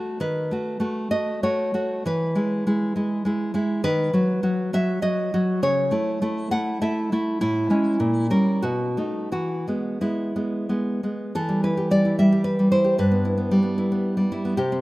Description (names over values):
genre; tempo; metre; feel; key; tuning
romantic piece for solo classical guitar; 86-115 BPM; 3/4; rubato; E major, E minor from 11.3 s; A4 = 439 Hz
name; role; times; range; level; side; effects
nylon-string guitar; solo; 0.0-14.8 s; G2 to F#5; -20 LUFS; equal; none
room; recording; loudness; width
moderate lush hall reverb, RT60 2.9 s; rough home demo mix; -20 LUFS; side -19 dB against mid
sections
0.0-11.3 A section; 11.3-14.8 B section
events
none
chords
0.2 B7/D#; 2.1 E; 3.8 B/D#; 5.6 A/C#; 7.4 Amaj7; 8.0 A#dim7; 8.6 B7; 9.3 E; 11.3 Em; 13.0 Em/G